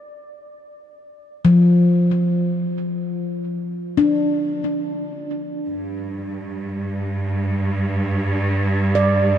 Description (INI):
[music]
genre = ambient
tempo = free time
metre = none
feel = none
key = unclear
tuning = A4 = 441 Hz
[part]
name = handpan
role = arpeggios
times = 0.0-9.4 s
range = F3 to D5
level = -18 LUFS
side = left 1 dB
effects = ping-pong delay
[part]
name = bright symphonic cello section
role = bass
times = 5.7-9.4 s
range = G2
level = -20 LUFS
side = right 1 dB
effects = none
[sound]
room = moderate huge ambient reverb, RT60 8.7 s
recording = nothing above 10.6 kHz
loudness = -18 LUFS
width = side -10 dB against mid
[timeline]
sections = 0.0-5.7 A section; 5.7-9.4 B section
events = fade-in on handpan 5.7-9.4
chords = 0.0 Dm/F; 5.7 G5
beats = free time